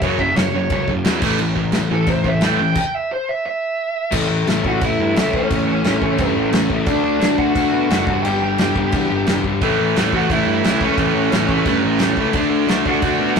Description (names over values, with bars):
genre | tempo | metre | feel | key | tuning
punk rock | 175 BPM | 4/4 | straight | A major, A mixolydian from 4.1 s | A4 = 439 Hz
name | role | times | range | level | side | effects
bluesy overdriven lead guitar | melody | 0.0-13.4 s | C#4 to G5 | -21 LUFS | right 3 dB | distortion
raw garage guitar | riff | 0.0-13.4 s | F#2 to D4 | -20 LUFS | left 5 dB | overdrive
tight distorted guitar | riff | 0.0-2.8, 9.6-13.4 s | F#2 to D4 | -22 LUFS | right 6 dB | distortion
fuzz picked electric bass | bass | 0.0-13.4 s | F#1 to B2 | -24 LUFS | equal | overdrive
loose indie drum kit | drums | 0.0-13.4 s | crash cymbal, kick drum, snare drum | -22 LUFS | equal | none
room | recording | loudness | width
moderate studio reverb, RT60 0.5 s | rough rehearsal-room recording, tube saturation | -15 LUFS | side -6 dB against mid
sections
0.0-4.1 A section; 4.1-13.4 B section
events
lead electric guitar solo 0.0-4.1; stop 2.8-4.1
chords
0.0 F#5; 1.2 A5; 4.1 A; 6.9 D; 8.1 G5; 9.6 A; 12.3 D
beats
| 0.02 0.36 0.71 1.05 | 1.39 1.74 2.08 2.42 | 2.76 3.11 3.45 3.79 | 4.13 4.47 4.82 5.16 | 5.50 5.84 6.18 6.53 | 6.87 7.21 7.55 7.89 | 8.24 8.58 8.92 9.27 | 9.61 9.95 10.29 10.63 | 10.98 11.32 11.66 12.00 | 12.35 12.69 13.03 13.37